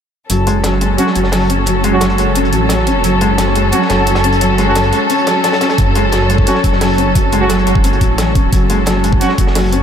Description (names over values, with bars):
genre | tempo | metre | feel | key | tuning
dark technical drum and bass | 175 BPM | 4/4 | straight | F# minor | A4 = 440 Hz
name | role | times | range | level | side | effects
muted studio string section | sustained chords | 0.3-9.8 s | F#3 to A4 | -17 LUFS | left 1 dB | sidechain pumping
felt-muted upright piano | arpeggios | 0.3-9.8 s | F#3 to C#4 | -17 LUFS | left 1 dB | sidechain pumping, low-pass filter, tape echo
phased detuned saw bass | bass | 0.3-9.8 s | F#1 to A1 | -16 LUFS | equal | phaser, overdrive
crunchy breakbeat drum kit | drums | 0.3-9.8 s | hi-hat, snare drum | -24 LUFS | equal | high-pass filter on hats, high-pass filter on snare, high-pass filter on room
electronic hi-hat | drums | 0.3-9.8 s | none | -23 LUFS | right 1 dB | overdrive
deep dark ambient pad | texture | 3.3-9.8 s | F#4 to A5 | -26 LUFS | left 1 dB | none
warm brass ensemble | stabs | 1.0-9.3 s | F#3 to F#4 | -20 LUFS | right 3 dB | low-pass filter, tape echo
electronic kick drum | drums | 5.8-9.5 s | none | -14 LUFS | equal | none
room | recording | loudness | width
moderate huge ambient reverb, RT60 7.9 s | dreamy mix soaked in reverb | -10 LUFS | side -8 dB against mid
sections
0.3-9.8 A section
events
none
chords
0.3 F#m